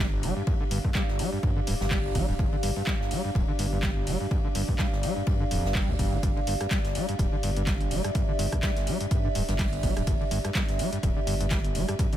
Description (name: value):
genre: acid house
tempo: 125 BPM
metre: 4/4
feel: swing 56% on 16ths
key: unclear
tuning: A4 = 440 Hz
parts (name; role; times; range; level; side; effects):
- overdriven acid bass; riff; 0.0-12.2 s; G1 to G3; -31 LUFS; equal; distortion, analog chorus, sidechain pumping, dub echo
- saturated sub bass; bass; 0.0-11.8 s; D1 to G2; -31 LUFS; equal; sidechain pumping
- compact cocktail drum kit; drums; 0.0-12.1 s; hi-hat, ride cymbal, snare drum; -42 LUFS; left 2 dB; high-pass filter on cymbals, high-pass filter on hats, high-pass filter on snare, high-pass filter on room
- warbly tape-like pad; texture; 0.0-12.2 s; D4 to F5; -33 LUFS; right 1 dB; chorus, built-in reverb, sidechain pumping
- punchy analog drum machine; drums; 0.2-12.2 s; handclaps, hi-hat, rim click; -35 LUFS; equal; none
- electronic kick drum; drums; 0.5-12.1 s; none; -28 LUFS; equal; none
room: studio reverb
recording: none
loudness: -24 LUFS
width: side -12 dB against mid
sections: 0.0-12.2 A section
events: none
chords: 0.0 G7(no3)